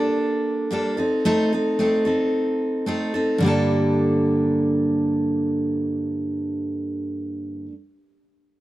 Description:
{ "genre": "pop", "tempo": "111 BPM", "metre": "4/4", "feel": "swing 55% on 16ths", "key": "G minor", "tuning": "A4 = 440 Hz", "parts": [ { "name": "picked steel-string acoustic guitar", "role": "accompaniment", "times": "0.0-7.7 s", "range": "G2 to A4", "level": "-20 LUFS", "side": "right 1 dB", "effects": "none" } ], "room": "small room ambience", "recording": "dry, close 1970s-style studio recording", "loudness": "-20 LUFS", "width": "side -16 dB against mid", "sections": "0.0-3.4 A section; 3.4-7.8 B section", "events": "none", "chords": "0.0 Gmadd9; 1.0 Adim; 3.4 Gmadd9" }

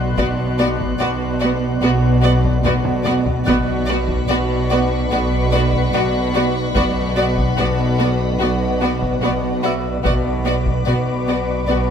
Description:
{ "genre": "cinematic, suspense film score", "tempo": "73 BPM", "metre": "4/4", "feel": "straight", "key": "B minor", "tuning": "A4 = 444 Hz", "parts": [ { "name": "glassy FM pad", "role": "sustained chords", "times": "0.0-11.9 s", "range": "B3 to F#5", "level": "-24 LUFS", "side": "left 1 dB", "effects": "ensemble chorus, built-in reverb" }, { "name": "dark studio cello section", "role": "bass", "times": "0.0-11.9 s", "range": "B2", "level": "-23 LUFS", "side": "right 1 dB", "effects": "none" }, { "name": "warm chamber double bass section", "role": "bass", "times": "0.0-11.9 s", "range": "B1", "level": "-23 LUFS", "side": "right 2 dB", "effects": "none" }, { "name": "analog drone", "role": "drone", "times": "0.0-11.9 s", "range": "B1", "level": "-24 LUFS", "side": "left 2 dB", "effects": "chorus" }, { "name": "music box", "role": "texture", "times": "0.0-11.9 s", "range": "E5 to F#6", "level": "-33 LUFS", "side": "right 3 dB", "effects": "none" }, { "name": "warm studio violin section", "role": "texture", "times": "0.0-11.9 s", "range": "F#5 to F#6", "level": "-30 LUFS", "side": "left 5 dB", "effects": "none" }, { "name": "clear studio violin section", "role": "melody", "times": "0.2-11.8 s", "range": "D5", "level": "-26 LUFS", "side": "left 4 dB", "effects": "none" }, { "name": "rich studio violin section", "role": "second line", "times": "0.2-11.8 s", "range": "F#4", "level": "-26 LUFS", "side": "left 2 dB", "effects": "none" }, { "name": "warm studio viola section", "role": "accompaniment", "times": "0.2-11.8 s", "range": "B3", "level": "-25 LUFS", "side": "right 2 dB", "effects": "none" }, { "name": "taiko ensemble", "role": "drums", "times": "0.2-11.4 s", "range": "none", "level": "-25 LUFS", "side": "left 1 dB", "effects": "none" } ], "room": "moderate concert hall reverb, RT60 1.9 s", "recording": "none", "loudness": "-16 LUFS", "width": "side -8 dB against mid", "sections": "0.0-11.9 A section", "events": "drum fill 2.6-3.5", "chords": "0.0 Bm" }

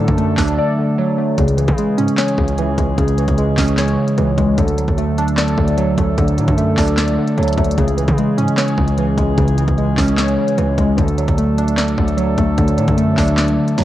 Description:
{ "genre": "hip hop, trap", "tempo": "150 BPM", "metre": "4/4", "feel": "half-time", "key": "C# phrygian", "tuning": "A4 = 440 Hz", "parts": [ { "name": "glassy digital keys", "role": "accompaniment", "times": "0.0-13.8 s", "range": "C#3 to D5", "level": "-19 LUFS", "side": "equal", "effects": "chorus, cassette tape" }, { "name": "mellow brass ensemble", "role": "sustained chords", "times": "0.0-13.8 s", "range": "E3 to A4", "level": "-27 LUFS", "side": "left 1 dB", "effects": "stereo widening, cassette tape" }, { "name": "mellow tine electric piano", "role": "arpeggios", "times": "0.0-13.8 s", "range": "C#3 to A3", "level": "-18 LUFS", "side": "right 1 dB", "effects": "cassette tape, analog delay" }, { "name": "hard-hitting 808-style bass", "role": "bass", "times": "0.0-13.8 s", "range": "C#2 to C#3", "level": "-20 LUFS", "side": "equal", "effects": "none" }, { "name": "trap drum kit", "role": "drums", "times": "0.1-13.8 s", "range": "handclaps, hi-hat, kick drum, snare drum", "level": "-21 LUFS", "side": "equal", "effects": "none" } ], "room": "moderate spring reverb, RT60 2.0 s", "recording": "home recording on cassette", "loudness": "-14 LUFS", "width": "side -13 dB against mid", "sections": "0.0-1.4 A section; 1.4-13.8 A section", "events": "silent gap 0.6-1.4", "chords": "0.0 D; 1.4 C#m; 4.6 D; 7.8 C#m; 11.0 D" }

